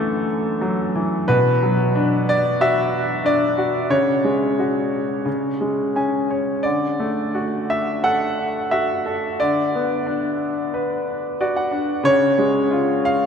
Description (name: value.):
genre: classical, lyrical solo piano.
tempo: 90 BPM.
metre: 4/4.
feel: rubato.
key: unclear.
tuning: A4 = 440 Hz.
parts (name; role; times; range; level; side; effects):
bright baby grand piano; solo; 0.0-13.3 s; F#2 to G#5; -18 LUFS; equal; none.
room: wet cathedral reverb, RT60 6.0 s.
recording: in a vast, echoing space.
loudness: -18 LUFS.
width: side -7 dB against mid.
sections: 0.0-13.3 A section.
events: grand piano fill 5.6-6.7, 11.1-12.1.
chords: 0.0 Dadd9/F#; 1.3 Bm; 3.9 C#sus4; 5.3 C#5; 6.7 Dadd9; 9.4 Bm/D; 12.1 C#.